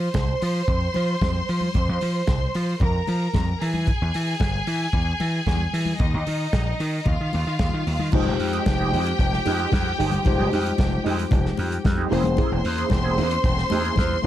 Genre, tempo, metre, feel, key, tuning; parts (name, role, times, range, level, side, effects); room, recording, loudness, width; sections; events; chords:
disco; 113 BPM; 4/4; straight; F minor; A4 = 440 Hz
bright symphonic string section; second line; 0.0-14.3 s; Eb4 to C6; -28 LUFS; equal
gritty slap bass; bass; 0.0-14.3 s; E1 to F3; -24 LUFS; equal; overdrive
warm soul drum kit; drums; 0.1-14.1 s; crash cymbal, hi-hat, kick drum, snare drum; -25 LUFS; equal
congas; percussion; 0.1-14.2 s; -32 LUFS; left 4 dB
mellow electric guitar; accompaniment; 8.1-14.3 s; Ab3 to Ab4; -28 LUFS; right 6 dB; wah
mellow tine electric piano; accompaniment; 8.1-14.3 s; G3 to C5; -27 LUFS; left 5 dB; wide subtle chorus
small room ambience; dark, warm production; -20 LUFS; side -12 dB against mid
0.0-8.1 A section; 8.1-14.3 B section
0.0 F5; 3.6 E; 6.0 Ebsus2; 8.1 Fm9; 12.1 C7b9b13/E